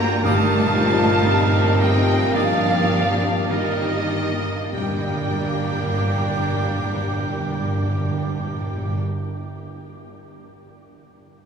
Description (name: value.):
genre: cinematic, emotional film score for orchestra.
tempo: 47-60 BPM.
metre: 4/4.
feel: rubato.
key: G minor.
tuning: A4 = 441 Hz.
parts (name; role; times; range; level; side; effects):
warm studio violin section; melody; 0.0-9.0 s; Eb5 to Bb5; -27 LUFS; equal; none.
clear oboe; second line; 0.0-9.0 s; Bb4 to G5; -30 LUFS; right 4 dB; none.
rich studio violin section; second line; 0.0-9.0 s; D4 to Bb4; -30 LUFS; equal; none.
felt-muted upright piano; accompaniment; 0.0-11.5 s; D2 to G5; -30 LUFS; left 5 dB; none.
warm studio viola section; accompaniment; 0.0-9.0 s; D3 to D4; -27 LUFS; left 1 dB; none.
dark French horn section; sustained chords; 0.0-9.0 s; Bb2 to D4; -30 LUFS; right 2 dB; none.
rich studio cello section; bass; 0.0-9.0 s; Eb3 to Bb3; -29 LUFS; right 2 dB; none.
rich studio double bass section; bass; 0.0-9.0 s; G1; -25 LUFS; equal; none.
bright small flute group; second line; 0.2-9.0 s; D6 to Eb6; -34 LUFS; right 1 dB; none.
timpani; percussion; 0.2-9.0 s; G2; -27 LUFS; right 2 dB; none.
warm clarinet; second line; 0.3-9.0 s; Bb3; -35 LUFS; right 2 dB; none.
room: wet huge ambient reverb, RT60 8.2 s.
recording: in a vast, echoing space, studio reverb.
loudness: -18 LUFS.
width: side -6 dB against mid.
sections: 0.0-4.7 A section; 4.7-9.7 B section.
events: slowing down 0.0-4.7.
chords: 0.2 Eb/G; 4.7 Gm.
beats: | 0.24 1.27 2.35 3.50 | 4.75 5.97 7.19 8.44.